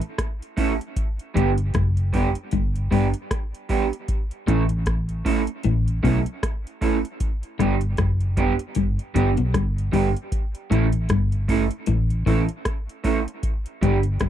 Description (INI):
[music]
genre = roots reggae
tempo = 77 BPM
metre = 4/4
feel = swing 58% on 16ths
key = unclear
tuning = A4 = 440 Hz
[part]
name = booming analog drum machine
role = drums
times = 0.0-14.3 s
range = hi-hat, kick drum, rim click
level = -25 LUFS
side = equal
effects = overdrive
[part]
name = electric guitar through a small old amp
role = accompaniment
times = 0.6-14.0 s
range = G3 to A4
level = -26 LUFS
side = right 6 dB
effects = lush chorus, dub echo
[part]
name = electric guitar at the edge of break-up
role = riff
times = 1.4-14.3 s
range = F#2 to B2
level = -25 LUFS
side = left 6 dB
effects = none
[part]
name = vintage muted fingered electric bass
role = bass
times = 1.4-14.3 s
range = F#1 to B1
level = -22 LUFS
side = equal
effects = none
[sound]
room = little or no reverb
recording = dry, close 1970s-style studio recording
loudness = -20 LUFS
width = side -10 dB against mid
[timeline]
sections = 0.0-14.3 A section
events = none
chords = 0.0 A; 1.0 G; 4.1 A; 7.2 G; 10.3 A; 13.4 G